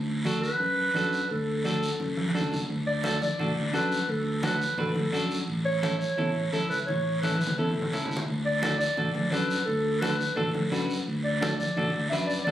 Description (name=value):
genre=latin, cumbia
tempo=172 BPM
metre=4/4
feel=straight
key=D major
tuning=A4 = 440 Hz
part: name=fingered electric bass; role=bass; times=0.0-12.5 s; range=A1 to F#2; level=-31 LUFS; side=equal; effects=none
part: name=dark clarinet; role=melody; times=0.2-12.5 s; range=F#4 to E5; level=-29 LUFS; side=equal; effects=none
part: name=congas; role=percussion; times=0.2-12.5 s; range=none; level=-33 LUFS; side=equal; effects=none
part: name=clean electric guitar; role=accompaniment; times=0.3-12.5 s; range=C#4 to B4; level=-33 LUFS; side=equal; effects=none
part: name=guiro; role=percussion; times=0.3-12.5 s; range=none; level=-36 LUFS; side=equal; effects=none
room=moderate large studio reverb, RT60 1.3 s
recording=recorded on a phone in the room, club reverb, compression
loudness=-25 LUFS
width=side -12 dB against mid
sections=0.0-2.7 A section; 2.7-12.5 B section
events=drum fill 2.2-2.7, 7.2-8.3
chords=0.0 D; 5.5 A; 8.3 D